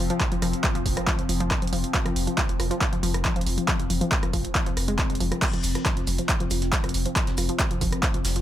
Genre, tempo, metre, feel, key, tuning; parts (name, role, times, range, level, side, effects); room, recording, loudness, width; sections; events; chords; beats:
driving peak-time techno; 138 BPM; 4/4; straight; A4 = 440 Hz
wide unison pluck; riff; 0.0-8.4 s; F3 to Ab3; -30 LUFS; left 1 dB; sidechain pumping, tape echo
saturated sub bass; bass; 0.0-8.4 s; F1; -29 LUFS; equal; tube saturation, sidechain pumping, low-pass filter
deep dark ambient pad; drone; 0.0-8.4 s; F3 to C4; -33 LUFS; left 2 dB; chorus, built-in reverb, sidechain pumping
punchy analog drum machine; drums; 0.1-8.4 s; crash cymbal, handclaps, hi-hat, rim click; -28 LUFS; right 1 dB; sidechain pumping on hats, sidechain pumping on cymbals
electronic kick drum; drums; 0.2-8.1 s; -26 LUFS; equal
soft brush drum kit; drums; 5.4-8.4 s; hi-hat, shaker, snare drum; -37 LUFS; left 1 dB; sidechain pumping on hats, high-pass filter on hats, high-pass filter on snare, sidechain pumping on perc, high-pass filter on perc, high-pass filter on room
light reverb, studio ambience; -22 LUFS; side -12 dB against mid
0.0-8.4 A section
0.0 F5
| 0.20 0.64 1.07 1.51 | 1.94 2.38 2.81 3.25 | 3.68 4.12 4.55 4.99 | 5.42 5.86 6.29 6.73 | 7.16 7.60 8.03